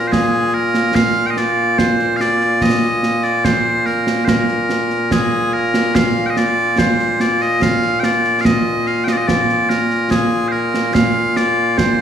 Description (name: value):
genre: scottish traditional, Scottish pipe music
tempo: 72 BPM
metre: 3/4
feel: straight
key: Bb mixolydian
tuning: A4 = 440 Hz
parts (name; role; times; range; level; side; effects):
- loud bright bagpipes; melody; 0.0-12.0 s; Bb2 to G5; -15 LUFS; equal; none
- concert snare drum and concert bass drum; drums; 0.1-12.0 s; none; -18 LUFS; right 1 dB; none
room: moderate concert hall reverb, RT60 1.9 s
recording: recorded in a church or concert hall, small room ambience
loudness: -14 LUFS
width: side -8 dB against mid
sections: 0.1-12.0 A section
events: none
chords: none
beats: | 0.12 0.95 1.78 | 2.62 3.45 4.28 | 5.12 5.95 6.78 | 7.62 8.45 9.28 | 10.12 10.95 11.78